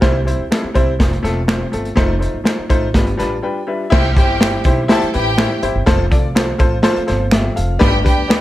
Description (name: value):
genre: uptempo 1960s-style soul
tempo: 123 BPM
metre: 4/4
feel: straight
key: C major from 3.9 s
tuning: A4 = 442 Hz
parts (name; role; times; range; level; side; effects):
- clear concert grand piano; accompaniment; 0.0-8.4 s; G3 to A5; -19 LUFS; left 2 dB; none
- upright bass; bass; 0.0-8.4 s; E1 to D2; -20 LUFS; equal; none
- crunchy breakbeat drum kit; drums; 0.0-8.4 s; crash cymbal, hi-hat, kick drum, snare drum; -16 LUFS; equal; none
- finger snap; percussion; 0.5-8.4 s; none; -27 LUFS; right 4 dB; none
- clear studio violin section; second line; 3.9-8.4 s; G4 to A5; -21 LUFS; equal; none
- mellow tonewheel organ; sustained chords; 3.9-8.4 s; D3 to F4; -27 LUFS; right 1 dB; none
room: light reverb, studio ambience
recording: none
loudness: -13 LUFS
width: side -15 dB against mid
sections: 0.0-3.9 A section; 3.9-8.4 B section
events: grand piano fill 3.0-3.9; break 3.4-3.9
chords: 0.0 C; 1.0 F; 2.0 F7; 3.0 G7; 3.9 C; 5.9 F; 7.8 G